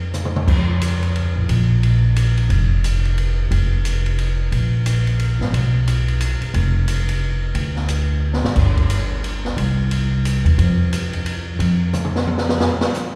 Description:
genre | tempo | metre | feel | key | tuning
jazz, small-group swing and bop | 178 BPM | 3/4 | swing 62% on 8ths | unclear | A4 = 440 Hz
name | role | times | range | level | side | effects
upright bass | bass | 0.0-12.6 s | F1 to F2 | -20 LUFS | equal | none
open jazz drum kit | drums | 0.1-13.0 s | crash cymbal, hi-hat, kick drum, ride cymbal, snare drum, toms | -26 LUFS | equal | none
room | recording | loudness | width
wet concert hall reverb, RT60 2.6 s | heard from further back in the room | -19 LUFS | mono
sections
0.5-12.6 A section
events
drum fill 0.1-0.5, 8.2-8.6, 11.9-12.6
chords
none

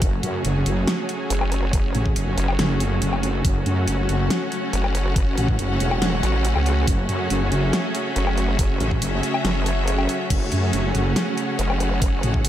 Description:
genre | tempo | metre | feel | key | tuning
heavy wobble dubstep | 140 BPM | 4/4 | half-time | F# minor | A4 = 440 Hz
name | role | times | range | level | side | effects
lush unison pad | sustained chords | 0.0-12.5 s | C#3 to G#4 | -27 LUFS | right 1 dB | chorus, sidechain pumping
wobble bass | bass | 0.0-12.5 s | E1 to F#2 | -22 LUFS | equal | chorus, overdrive
dubstep drum kit | drums | 0.0-12.5 s | crash cymbal, hi-hat, snare drum, woodblock | -26 LUFS | left 1 dB | studio reverb
electronic kick drum | drums | 0.0-12.4 s | none | -22 LUFS | equal | studio reverb
clear studio string section | texture | 0.0-12.5 s | C#4 to F#5 | -27 LUFS | left 1 dB | sidechain pumping
vowel-sweep wobble bass | bass | 1.3-12.2 s | F#1 to C#2 | -22 LUFS | equal | chorus, overdrive
room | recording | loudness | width
digital ambience | none | -19 LUFS | side -11 dB against mid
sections
0.0-12.5 A section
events
none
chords
0.0 F#m

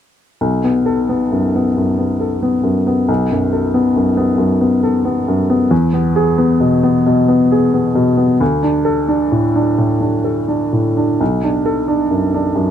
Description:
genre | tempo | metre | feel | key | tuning
neoclassical minimalist piano | 89 BPM | 4/4 | rubato | B dorian | A4 = 445 Hz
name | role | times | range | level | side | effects
warm upright piano | solo | 0.4-12.7 s | B1 to A4 | -13 LUFS | left 1 dB | none
room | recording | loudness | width
little or no reverb | close, detailed microphones | -13 LUFS | side -9 dB against mid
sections
0.4-11.2 A section; 11.2-12.7 B section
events
none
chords
0.4 B5; 5.7 E; 8.4 D5; 11.2 Bm7

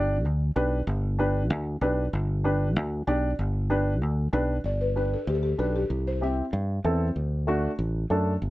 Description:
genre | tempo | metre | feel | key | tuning
latin | 191 BPM | 4/4 | straight | G major | A4 = 440 Hz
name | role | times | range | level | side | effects
dark upright piano | accompaniment | 0.0-8.3 s | A3 to D5 | -27 LUFS | equal | none
fingered electric bass | bass | 0.0-8.5 s | G1 to G2 | -26 LUFS | equal | none
buzzing marimba with soft mallets | melody | 4.7-6.8 s | G4 to E5 | -30 LUFS | left 3 dB | none
room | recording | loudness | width
light reverb | dark, warm production | -24 LUFS | side -17 dB against mid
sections
0.0-4.6 A section; 4.6-8.5 B section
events
none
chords
0.0 G; 5.9 C; 7.2 D

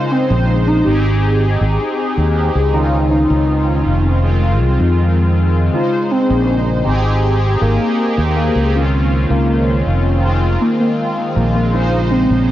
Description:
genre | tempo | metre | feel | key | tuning
vaporwave | 80 BPM | 4/4 | straight | unclear | A4 = 436 Hz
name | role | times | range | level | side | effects
warm velvety synth lead | melody | 0.0-12.5 s | Bb3 to F4 | -18 LUFS | equal | chorus, tape echo
mellow synth brass | accompaniment | 0.0-12.5 s | Db3 to C5 | -18 LUFS | left 1 dB | phaser, lush chorus, cassette tape, tape echo
fretless electric bass | bass | 0.3-12.5 s | F1 to F2 | -15 LUFS | equal | lush chorus
room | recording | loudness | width
light reverb, digital ambience | cassette tape, nothing above 7.5 kHz | -12 LUFS | side -13 dB against mid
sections
0.0-12.5 A section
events
none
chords
0.0 Bbm11; 0.9 Abmaj7; 2.7 Dbmaj9; 4.2 Fm7; 5.7 Bbm11; 6.9 Abmaj7; 8.7 Dbmaj9; 10.2 Fm7; 11.7 Bbm11

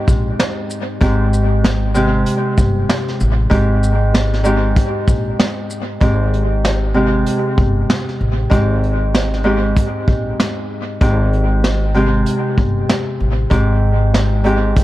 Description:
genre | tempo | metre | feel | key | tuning
hip hop, boom-bap hip-hop | 96 BPM | 4/4 | swing 60% on 16ths | Ab major | A4 = 436 Hz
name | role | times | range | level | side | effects
Celtic harp | accompaniment | 0.0-14.8 s | Ab2 to G4 | -18 LUFS | equal | cassette tape, dub echo
upright bass | bass | 0.1-14.7 s | G1 to Bb1 | -17 LUFS | equal | none
vintage brush drum kit | drums | 0.1-14.8 s | hi-hat, kick drum, shaker, snare drum | -18 LUFS | equal | dub echo
room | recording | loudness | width
light reverb, small room ambience | echo-heavy mix | -13 LUFS | side -16 dB against mid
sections
0.0-6.0 A section; 6.0-14.8 B section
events
none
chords
0.0 Abmaj7

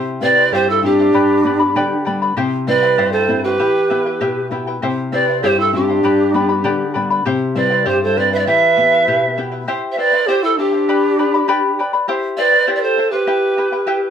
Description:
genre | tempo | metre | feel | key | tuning
andean folk, Andean ensemble | 99 BPM | 2/4 | straight | unclear | A4 = 440 Hz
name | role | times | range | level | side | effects
charango | accompaniment | 0.0-14.1 s | E4 to B5 | -20 LUFS | left 3 dB | none
flamenco guitar | accompaniment | 0.0-9.7 s | G2 to G4 | -22 LUFS | left 3 dB | none
bright reedy pan flute | melody | 0.2-14.1 s | G4 to E5 | -16 LUFS | equal | plate reverb
mellow large quena | second line | 0.2-14.1 s | D4 to C5 | -18 LUFS | right 3 dB | none
room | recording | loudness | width
wet small room reverb, RT60 0.5 s | none | -13 LUFS | side -8 dB against mid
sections
0.0-9.7 A section; 9.7-14.1 A section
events
speeding up 0.0-14.1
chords
0.0 C; 1.1 G; 2.4 C; 3.6 Em; 4.8 C; 6.0 G; 7.3 C; 8.5 Em; 9.7 C; 10.9 G; 12.1 C; 13.3 Em

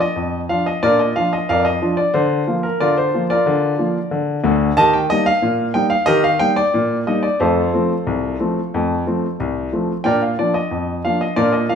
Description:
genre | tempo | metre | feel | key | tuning
ragtime piano | 91 BPM | 2/4 | straight | Bb major | A4 = 439 Hz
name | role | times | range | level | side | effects
clear baby grand piano | solo | 0.0-11.8 s | C2 to A5 | -16 LUFS | left 1 dB | none
room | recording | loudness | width
moderate large studio reverb, RT60 1.1 s | band playing live in one room | -15 LUFS | side -7 dB against mid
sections
0.0-11.8 A section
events
none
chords
0.0 Bb; 2.1 Bb/D; 4.8 Eb; 7.4 F; 10.1 Bb

